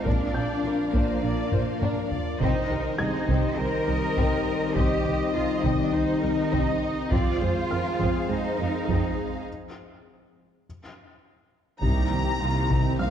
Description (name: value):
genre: cinematic, hybrid orchestral and electronic film score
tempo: 102 BPM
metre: 4/4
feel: straight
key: C minor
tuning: A4 = 439 Hz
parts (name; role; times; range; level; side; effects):
- rich symphonic violin section; melody; 0.0-13.1 s; Eb5 to Bb5; -36 LUFS; left 3 dB; none
- dark symphonic violin section; second line; 0.0-13.1 s; C4 to D5; -34 LUFS; left 3 dB; none
- rich chamber viola section; accompaniment; 0.0-13.1 s; Bb3 to Eb5; -35 LUFS; right 1 dB; none
- mellow French horn section; sustained chords; 0.0-13.1 s; Eb3 to Eb4; -32 LUFS; left 5 dB; none
- warbly tape-like pad; sustained chords; 0.0-13.1 s; Eb3 to C5; -33 LUFS; left 2 dB; chorus, built-in reverb
- rich symphonic cello section; bass; 0.0-13.1 s; C3 to Bb4; -30 LUFS; right 2 dB; none
- felt-muted upright piano; texture; 0.0-13.1 s; F5 to Ab6; -39 LUFS; left 1 dB; none
- soft round pluck; arpeggios; 0.1-13.1 s; C3 to F4; -34 LUFS; right 2 dB; chorus
- rich symphonic double bass section; bass; 0.1-13.1 s; Bb1 to F2; -30 LUFS; right 2 dB; none
- taiko ensemble; drums; 0.1-13.1 s; none; -29 LUFS; left 1 dB; none
- mellow tuba; bass; 11.8-13.1 s; C2; -30 LUFS; right 2 dB; none
room: moderate scoring stage reverb, RT60 1.7 s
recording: dark, warm production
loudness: -23 LUFS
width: side -9 dB against mid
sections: 0.0-11.8 A section; 11.8-13.1 B section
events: drum fill 1.5-2.4, 10.9-11.8; break 9.5-11.8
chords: 0.1 Bb; 2.4 Cm7; 7.1 Fm; 9.5 N.C.; 11.8 Cm7